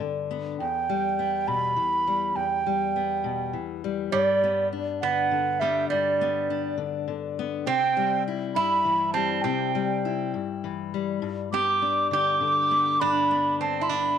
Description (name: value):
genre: acoustic folk duo or small band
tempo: 68 BPM (dotted quarters)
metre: 6/8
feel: straight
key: G major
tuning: A4 = 440 Hz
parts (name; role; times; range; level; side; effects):
- fingerpicked steel-string acoustic guitar; accompaniment; 0.0-14.2 s; E2 to E4; -29 LUFS; left 10 dB; none
- baroque flute; melody; 0.6-14.2 s; D5 to D6; -24 LUFS; right 3 dB; none
- metal-body resonator slide guitar; second line; 4.1-14.2 s; G3 to G4; -30 LUFS; right 7 dB; none
room: wet spring reverb, RT60 1.6 s, small room ambience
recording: 1960s-style stereo with parts hard left and right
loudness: -23 LUFS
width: side -8 dB against mid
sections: 0.0-4.1 A section; 4.1-14.2 A section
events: none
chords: 0.0 G; 0.6 Em; 4.1 G; 7.7 C; 11.2 G